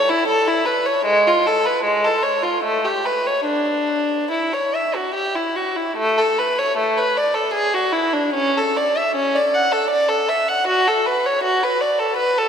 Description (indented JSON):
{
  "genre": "classical, baroque-style suite movement for unaccompanied violin",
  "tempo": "70-82 BPM",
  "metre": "3/4",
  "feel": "rubato",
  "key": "D major, A major from 6.0 s",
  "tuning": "A4 = 440 Hz",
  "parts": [
    { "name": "rich violin", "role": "solo", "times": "0.0-12.5 s", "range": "G#3 to F#5", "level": "-17 LUFS", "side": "equal", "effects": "none" }
  ],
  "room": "wet cathedral reverb, RT60 5.6 s",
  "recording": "recorded in a church or concert hall",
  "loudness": "-17 LUFS",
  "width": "side -7 dB against mid",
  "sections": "0.0-6.0 A section; 6.0-12.5 A section",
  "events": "none",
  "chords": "none"
}